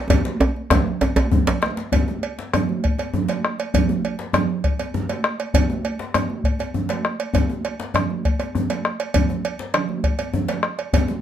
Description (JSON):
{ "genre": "west african traditional, West African drum ensemble", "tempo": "133 BPM (dotted quarters)", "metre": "12/8", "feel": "straight", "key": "none", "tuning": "none", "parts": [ { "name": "bombo", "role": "percussion", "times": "0.1-11.1 s", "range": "none", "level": "-21 LUFS", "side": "left 2 dB", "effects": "none" }, { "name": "congas", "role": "percussion", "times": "0.1-11.2 s", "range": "none", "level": "-26 LUFS", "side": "right 5 dB", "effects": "none" }, { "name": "cowbell", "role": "percussion", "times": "0.1-11.1 s", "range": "none", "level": "-27 LUFS", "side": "right 6 dB", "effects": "none" }, { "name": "djembe", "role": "percussion", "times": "0.1-11.2 s", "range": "none", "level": "-25 LUFS", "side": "left 4 dB", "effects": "none" }, { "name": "djembe", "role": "percussion", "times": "0.1-1.6 s", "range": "none", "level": "-21 LUFS", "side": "right 1 dB", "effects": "none" } ], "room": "wet studio reverb, RT60 0.7 s", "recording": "none", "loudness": "-19 LUFS", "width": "side -10 dB against mid", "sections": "0.0-1.9 A section; 1.9-11.2 B section", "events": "drum fill 0.1-1.9", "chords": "none", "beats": "| 0.10 0.56 1.02 1.47 | 1.93 2.38 2.83 3.29 | 3.74 4.20 4.65 5.10 | 5.55 6.00 6.45 6.90 | 7.35 7.80 8.25 8.70 | 9.15 9.59 10.04 10.48 | 10.93" }